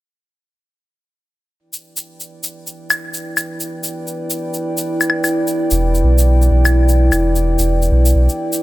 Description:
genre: future garage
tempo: 128 BPM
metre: 4/4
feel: swing 62% on 16ths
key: E minor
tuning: A4 = 439 Hz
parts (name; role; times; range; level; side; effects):
- dark analog pad; sustained chords; 1.6-8.6 s; E4 to G5; -20 LUFS; equal; chorus
- shaker and claves; drums; 1.7-8.6 s; none; -20 LUFS; left 2 dB; none
- warm sub bass; bass; 5.7-8.3 s; E1 to B1; -12 LUFS; equal; none
room: little or no reverb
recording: none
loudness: -14 LUFS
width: side -17 dB against mid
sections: 1.6-8.6 A section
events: none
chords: 1.6 Em7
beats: | 1.58 2.05 2.52 2.99 | 3.46 3.92 4.39 4.86 | 5.33 5.80 6.27 6.74 | 7.21 7.67 8.14 8.61

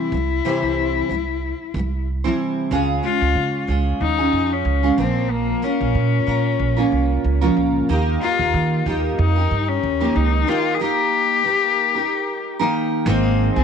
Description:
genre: acoustic pop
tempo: 93 BPM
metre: 4/4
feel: swing 55% on 16ths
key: unclear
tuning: A4 = 443 Hz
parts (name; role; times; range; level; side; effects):
- warm cello; melody; 0.0-13.6 s; Bb3 to Ab4; -22 LUFS; left 9 dB; none
- picked steel-string acoustic guitar; accompaniment; 0.0-13.6 s; Ab2 to C5; -21 LUFS; right 2 dB; double-tracked left and right
- upright bass; bass; 0.1-13.6 s; Ab1 to Eb3; -21 LUFS; right 2 dB; none
room: light reverb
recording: none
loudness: -17 LUFS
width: side -7 dB against mid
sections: 0.0-2.7 A section; 2.7-13.1 B section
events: none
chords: 0.0 C; 2.7 Db; 5.0 Bbm; 7.9 Eb; 13.1 Ab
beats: | 0.12 0.77 1.42 2.07 | 2.71 3.36 4.01 4.66 | 5.30 5.95 6.60 7.25 | 7.89 8.54 9.19 9.83 | 10.48 11.13 11.77 12.42 | 13.06

